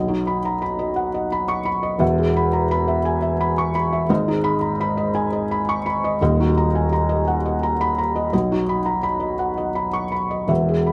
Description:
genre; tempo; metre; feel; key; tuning
neoclassical minimalist piano; 85 BPM; 3/4; rubato; unclear; A4 = 440 Hz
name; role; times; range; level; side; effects
felt-muted upright piano; solo; 0.0-10.9 s; D#1 to C#6; -21 LUFS; equal; none
room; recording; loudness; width
light reverb; none; -21 LUFS; mono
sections
0.0-10.9 A section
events
none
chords
0.0 B; 2.0 E; 4.1 G#m; 6.2 D#m; 8.3 B

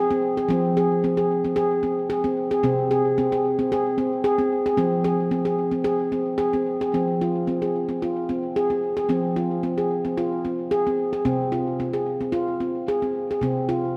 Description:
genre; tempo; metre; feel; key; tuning
world meditative, meditative tuned percussion; 111 BPM; 4/4; straight; F minor pentatonic; A4 = 436 Hz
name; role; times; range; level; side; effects
handpan; solo; 0.0-14.0 s; C3 to Ab4; -23 LUFS; equal; tape echo
room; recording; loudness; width
wet echo chamber reverb, RT60 2.5 s; none; -23 LUFS; mono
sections
0.0-6.9 A section; 6.9-14.0 B section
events
none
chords
0.0 Fm; 2.6 Ab/C; 4.8 Fm; 11.2 Fm/C

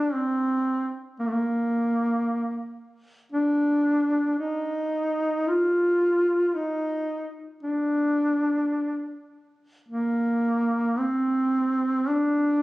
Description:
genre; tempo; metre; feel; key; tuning
caucasian folk, Caucasian lament; 55 BPM; 3/4; rubato; unclear; A4 = 439 Hz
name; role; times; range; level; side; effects
mellow duduk; solo; 0.0-12.6 s; A3 to F4; -22 LUFS; equal; none
room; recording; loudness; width
light reverb; recorded on a phone in the room, studio reverb, compression; -22 LUFS; side -19 dB against mid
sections
0.0-12.6 A section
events
none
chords
none

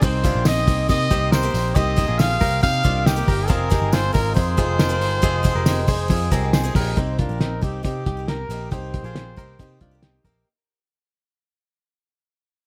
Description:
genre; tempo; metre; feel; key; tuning
jangly indie pop; 138 BPM; 4/4; straight; C minor; A4 = 440 Hz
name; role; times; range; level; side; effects
warm trumpet; melody; 0.0-10.2 s; G4 to F5; -27 LUFS; equal; none
glockenspiel with soft plastic mallets; second line; 0.0-6.5 s; G5 to F6; -36 LUFS; equal; none
picked twelve-string acoustic guitar; accompaniment; 0.0-10.5 s; F2 to Ab4; -32 LUFS; equal; none
direct-recorded clean electric guitar; arpeggios; 0.0-10.5 s; C4 to C5; -32 LUFS; equal; warbly pitch drift
vintage muted picked electric bass; bass; 0.0-10.4 s; F1 to C3; -26 LUFS; equal; none
cloth-damped thuddy drum kit; drums; 0.0-10.4 s; hi-hat, kick drum, snare drum; -23 LUFS; equal; none
tambourine; percussion; 0.2-6.9 s; none; -40 LUFS; equal; none
room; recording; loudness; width
little or no reverb; none; -20 LUFS; mono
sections
0.0-7.0 A section; 7.0-10.5 B section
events
fade-out 7.0-10.5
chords
0.0 Cm7; 3.5 Fm7; 7.0 Cm7

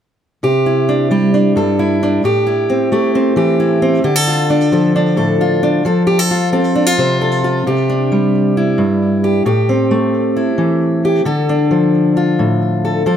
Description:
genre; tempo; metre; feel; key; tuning
folk; 133 BPM; 4/4; straight; C major; A4 = 444 Hz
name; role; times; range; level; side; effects
fingerpicked steel-string acoustic guitar; solo; 0.4-13.2 s; G2 to C5; -12 LUFS; equal; digital delay
room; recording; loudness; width
moderate echo chamber reverb, RT60 1.4 s; none; -12 LUFS; side -9 dB against mid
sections
0.4-7.7 A section; 7.7-13.2 B section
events
none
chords
0.4 Cadd9; 2.2 Am7; 4.0 Dm; 5.9 F; 7.7 Cadd9; 9.5 Am7; 11.3 Dm

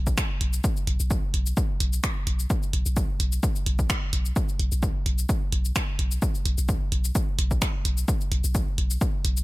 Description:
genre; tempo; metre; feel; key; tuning
minimal techno; 129 BPM; 4/4; swing 54% on 16ths; unclear; A4 = 441 Hz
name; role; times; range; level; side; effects
punchy sub bass; bass; 0.0-9.4 s; B1; -24 LUFS; equal; sidechain pumping
electronic kick drum; drums; 0.1-9.1 s; none; -26 LUFS; equal; overdrive
punchy analog drum machine; drums; 0.1-9.4 s; cabasa, finger snaps, hi-hat; -31 LUFS; equal; none
room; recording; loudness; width
little or no reverb; none; -23 LUFS; side -20 dB against mid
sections
0.0-9.4 A section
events
none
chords
none

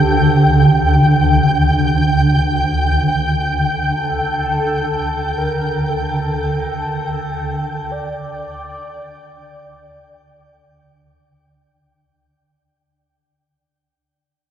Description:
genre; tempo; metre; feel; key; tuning
dark ambient drone; free time; none; none; unclear; A4 = 440 Hz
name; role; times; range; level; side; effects
mellow horn-like synth lead; melody; 0.0-11.5 s; A4 to D5; -26 LUFS; left 1 dB; ensemble chorus, shimmer reverb, diffuse ambient delay
swarming drone; drone; 0.0-12.1 s; D2 to D3; -16 LUFS; right 1 dB; built-in reverb
flickering grainy texture; texture; 0.0-12.0 s; G5; -20 LUFS; equal; built-in reverb, shimmer reverb
room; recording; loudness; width
wet huge ambient reverb, RT60 8.6 s; none; -14 LUFS; side -10 dB against mid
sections
0.0-12.0 A section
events
fade-out 1.2-12.0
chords
0.0 D5

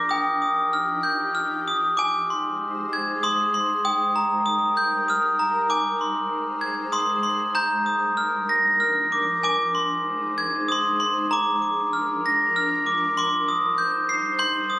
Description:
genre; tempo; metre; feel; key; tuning
children's music, lullaby; 97 BPM; 3/4; straight; unclear; A4 = 440 Hz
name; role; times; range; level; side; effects
glockenspiel with hard plastic mallets; melody; 0.0-14.8 s; G5 to C7; -20 LUFS; equal; slapback echo
granular cloud pad; sustained chords; 0.0-14.8 s; F3 to C5; -32 LUFS; equal; built-in reverb
room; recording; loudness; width
light reverb; recorded on a phone in the room, studio reverb; -20 LUFS; side -18 dB against mid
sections
0.0-2.0 A section; 2.0-14.8 B section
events
none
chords
0.1 Ebadd9; 2.0 Ab; 3.9 Eb/G; 5.7 Ab; 7.6 Eb/Bb; 8.2 Bb; 9.4 Ab; 11.3 Bb; 13.2 Cm

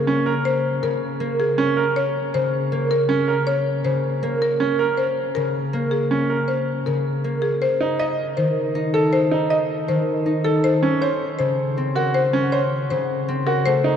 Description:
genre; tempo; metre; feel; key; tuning
classical, minimalist pattern music; 159 BPM; 4/4; straight; Bb minor; A4 = 440 Hz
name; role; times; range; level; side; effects
buzzing marimba with medium hard mallets; melody; 0.0-13.9 s; Ab4 to Eb5; -24 LUFS; left 5 dB; none
concert harp; accompaniment; 0.0-14.0 s; Db3 to Eb4; -22 LUFS; right 1 dB; none
bright grand piano; arpeggios; 0.1-14.0 s; Db4 to Eb5; -24 LUFS; right 4 dB; none
room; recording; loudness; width
wet cathedral reverb, RT60 6.9 s; in a vast, echoing space, nothing above 10.4 kHz; -18 LUFS; side -8 dB against mid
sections
0.0-7.6 A section; 7.6-14.0 B section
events
none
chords
0.0 Bbm/Db; 7.6 Adim/Eb; 10.6 Ebm7

